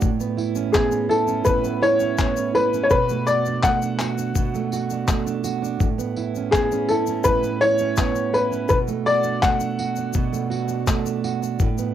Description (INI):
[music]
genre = acoustic pop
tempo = 83 BPM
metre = 4/4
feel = straight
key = unclear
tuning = A4 = 440 Hz
[part]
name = fingerpicked steel-string acoustic guitar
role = accompaniment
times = 0.0-11.9 s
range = A2 to F#4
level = -24 LUFS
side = right 7 dB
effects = cassette tape, plate reverb
[part]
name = dusty soul sampler-style drum kit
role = drums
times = 0.0-11.8 s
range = handclaps, kick drum, tambourine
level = -23 LUFS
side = left 2 dB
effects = cassette tape
[part]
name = tube shaker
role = percussion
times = 0.0-11.9 s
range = none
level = -38 LUFS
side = left 13 dB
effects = none
[part]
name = clear upright piano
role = melody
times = 0.7-10.8 s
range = G#4 to F#5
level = -21 LUFS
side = left 2 dB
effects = cassette tape, plate reverb
[sound]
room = light reverb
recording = home recording on cassette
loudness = -19 LUFS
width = side -10 dB against mid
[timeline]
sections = 0.0-11.9 A section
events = none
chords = 0.0 Aadd9; 2.9 Bm7; 5.8 Aadd9; 8.7 Bm7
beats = | 0.02 0.74 1.47 2.19 | 2.91 3.63 4.36 5.08 | 5.80 6.53 7.25 7.98 | 8.70 9.42 10.15 10.87 | 11.60